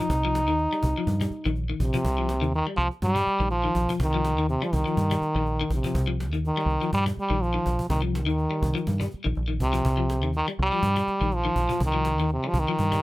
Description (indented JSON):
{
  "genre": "afrobeat",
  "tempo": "123 BPM",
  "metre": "4/4",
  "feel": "swing 55% on 16ths",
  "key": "C minor",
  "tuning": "A4 = 440 Hz",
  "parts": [
    { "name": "trombone with metal mute", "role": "melody", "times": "0.0-13.0 s", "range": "C3 to Eb4", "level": "-26 LUFS", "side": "equal", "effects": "none" },
    { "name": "clean electric guitar", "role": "arpeggios", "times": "0.0-13.0 s", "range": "Eb3 to G3", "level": "-32 LUFS", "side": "left 6 dB", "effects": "tremolo" },
    { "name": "deep dub fingered electric bass", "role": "bass", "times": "0.0-13.0 s", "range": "Bb1 to G2", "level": "-26 LUFS", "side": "equal", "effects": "none" },
    { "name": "cajon", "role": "drums", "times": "0.0-13.0 s", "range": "none", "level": "-35 LUFS", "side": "equal", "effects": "none" }
  ],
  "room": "little or no reverb",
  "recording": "none",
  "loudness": "-23 LUFS",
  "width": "side -18 dB against mid",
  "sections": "0.0-2.0 A section; 2.0-13.0 A section",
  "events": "none",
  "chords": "0.0 Cm7",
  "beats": "| 0.10 0.59 1.08 1.56 | 2.05 2.54 3.02 3.51 | 4.00 4.49 4.97 5.46 | 5.95 6.43 6.92 7.41 | 7.90 8.38 8.87 9.36 | 9.85 10.34 10.83 11.32 | 11.80 12.29 12.78"
}